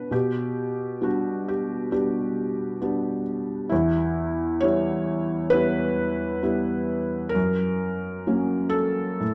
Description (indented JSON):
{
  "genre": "classical, lyrical solo piano",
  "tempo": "66 BPM",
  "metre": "4/4",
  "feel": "rubato",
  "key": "unclear",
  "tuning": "A4 = 440 Hz",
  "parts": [
    { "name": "felt-muted upright piano", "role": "solo", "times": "0.0-9.3 s", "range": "E2 to C#5", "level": "-25 LUFS", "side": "equal", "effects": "none" }
  ],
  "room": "moderate scoring stage reverb, RT60 1.9 s",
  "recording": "dark, warm production",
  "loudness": "-25 LUFS",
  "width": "mono",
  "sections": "0.0-9.3 A section",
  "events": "none",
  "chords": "0.1 G/B; 3.7 Em; 7.3 F#"
}